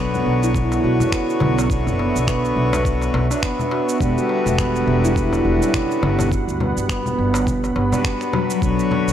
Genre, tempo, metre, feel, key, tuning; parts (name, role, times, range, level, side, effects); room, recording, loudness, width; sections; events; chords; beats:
organic downtempo; 104 BPM; 4/4; swing 57% on 16ths; B harmonic minor; A4 = 440 Hz
hand-pumped harmonium; accompaniment; 0.0-9.1 s; D3 to C#5; -25 LUFS; left 3 dB; sidechain pumping, analog delay
warm analog pad; sustained chords; 0.0-9.1 s; G3 to C#6; -28 LUFS; right 2 dB; chorus, sidechain pumping
concert harp; arpeggios; 0.0-9.1 s; F#3 to B4; -21 LUFS; right 1 dB; analog delay
upright bass; bass; 0.0-9.1 s; E1 to D2; -22 LUFS; equal; tube saturation, sidechain pumping
electronic congas, shaker and finger snaps; drums; 0.1-9.1 s; -26 LUFS; left 1 dB; overdrive, studio reverb
electronic kick drum; drums; 0.5-8.8 s; -23 LUFS; equal; overdrive, studio reverb
darbuka; percussion; 0.7-9.0 s; -28 LUFS; left 2 dB
light reverb, small room reverb; dry, gritty hardware recording; -17 LUFS; side -10 dB against mid
0.0-9.1 A section
0.0 Bmadd9; 4.0 Em9; 6.3 Gmaj7; 8.6 Bmadd9
0.55 1.12 | 1.70 2.28 2.85 3.43 | 4.01 4.58 5.16 5.74 | 6.31 6.89 7.47 8.04 | 8.62